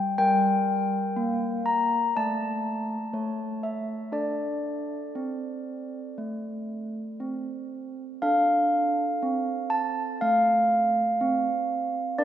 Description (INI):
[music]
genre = classical, tune for handbells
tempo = 60 BPM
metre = 4/4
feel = straight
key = D minor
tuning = A4 = 440 Hz
[part]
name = handbells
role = solo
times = 0.0-12.2 s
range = G3 to Bb5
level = -24 LUFS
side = equal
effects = none
[sound]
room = wet church reverb, RT60 3.4 s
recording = recorded in a church or concert hall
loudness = -24 LUFS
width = side -10 dB against mid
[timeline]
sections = 0.0-8.2 A section; 8.2-12.2 A section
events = none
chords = 0.0 Gm; 2.1 D5/A; 3.1 A; 4.1 D5